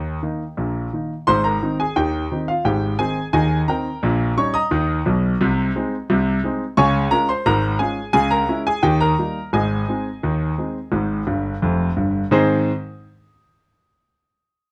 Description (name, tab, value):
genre	ragtime piano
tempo	87 BPM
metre	2/4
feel	straight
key	Ab major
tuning	A4 = 440 Hz
part	clear concert grand piano	solo	0.0-12.7 s	F1 to Eb6	-20 LUFS	equal	none
room	moderate studio reverb, RT60 0.8 s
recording	dark, warm production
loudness	-20 LUFS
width	mono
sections	0.0-12.3 A section; 12.3-13.7 B section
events	grand piano fill 11.3-12.3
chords	0.0 Eb; 1.3 Ab; 4.0 Eb7/Bb; 5.4 Ab/C; 6.8 Db; 8.1 Dbm; 8.8 Eb; 9.5 Ab